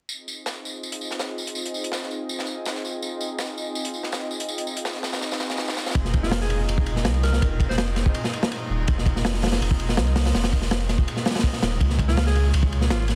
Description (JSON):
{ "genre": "drum and bass, jungle", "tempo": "164 BPM", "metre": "4/4", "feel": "straight", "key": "F minor", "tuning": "A4 = 440 Hz", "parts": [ { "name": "warbly tape-like pad", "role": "sustained chords", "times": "0.3-13.2 s", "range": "Bb3 to Eb5", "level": "-35 LUFS", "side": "equal", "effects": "chorus, built-in reverb" }, { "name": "crunchy breakbeat drum kit", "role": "drums", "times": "0.1-6.0 s", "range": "hi-hat, snare drum, tambourine", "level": "-31 LUFS", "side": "equal", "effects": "high-pass filter on hats, high-pass filter on snare, high-pass filter on perc, high-pass filter on room" }, { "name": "saturated sub bass", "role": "bass", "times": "6.0-13.2 s", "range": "Eb1 to Db2", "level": "-26 LUFS", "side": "equal", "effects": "none" }, { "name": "crunchy breakbeat drum kit", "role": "drums", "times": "6.0-13.2 s", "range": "hi-hat, kick drum, ride cymbal, snare drum", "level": "-25 LUFS", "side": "equal", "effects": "none" }, { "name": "raspy alto saxophone", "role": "melody", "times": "6.2-7.8, 12.1-13.1 s", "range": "F4 to C5", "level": "-35 LUFS", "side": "equal", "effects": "dub echo" } ], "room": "light reverb, small room ambience", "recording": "dense, heavily limited modern master, vinyl crackle", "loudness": "-24 LUFS", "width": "mono", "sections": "0.1-6.0 A section; 6.0-13.2 B section", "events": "drop 6.0-13.2", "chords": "0.1 Fm7; 11.8 Db6", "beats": "| 0.10 0.46 0.83 1.19 | 1.56 1.93 2.29 2.66 | 3.02 3.39 3.75 4.12 | 4.49 4.85 5.22 5.58 | 5.95 6.32 6.68 7.05 | 7.41 7.78 8.15 8.51 | 8.88 9.24 9.61 9.97 | 10.34 10.71 11.07 11.44 | 11.80 12.17 12.54 12.90" }